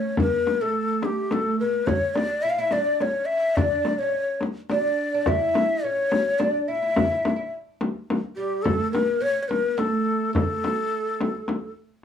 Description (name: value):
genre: Persian modal ensemble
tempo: 106 BPM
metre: 3/4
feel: straight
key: A dastgah homayun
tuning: A4 = 440 Hz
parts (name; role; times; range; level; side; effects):
- breathy ney; melody; 0.0-11.7 s; G4 to F5; -24 LUFS; left 2 dB; none
- oud; second line; 0.0-11.7 s; G3 to E4; -29 LUFS; right 2 dB; none
- frame drum; percussion; 0.2-11.6 s; none; -26 LUFS; left 2 dB; none
- tombak; percussion; 0.2-11.6 s; none; -30 LUFS; equal; none
room: moderate studio reverb, RT60 0.5 s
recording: small room ambience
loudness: -21 LUFS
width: side -8 dB against mid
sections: 0.0-12.0 A section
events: none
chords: none